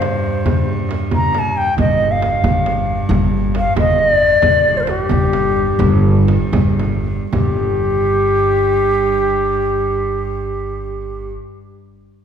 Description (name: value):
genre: Persian modal ensemble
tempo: 72-90 BPM (dotted quarters)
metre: 6/8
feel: straight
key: G dastgah shur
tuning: A4 = 441 Hz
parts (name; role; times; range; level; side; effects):
- reedy ney; melody; 0.0-11.3 s; G4 to Bb5; -16 LUFS; left 1 dB; none
- bright cello; drone; 0.0-11.3 s; G2; -23 LUFS; right 1 dB; none
- frame drum; percussion; 0.0-7.6 s; none; -22 LUFS; right 1 dB; none
- tombak; percussion; 0.0-7.6 s; none; -23 LUFS; left 1 dB; none
- upright bass; bass; 1.8-11.3 s; G1; -20 LUFS; right 1 dB; none
room: wet recital hall reverb, RT60 1.8 s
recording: recorded in a church or concert hall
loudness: -13 LUFS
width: side -8 dB against mid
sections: 0.0-7.3 A section; 7.3-10.7 B section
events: slowing down 4.4-7.3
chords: none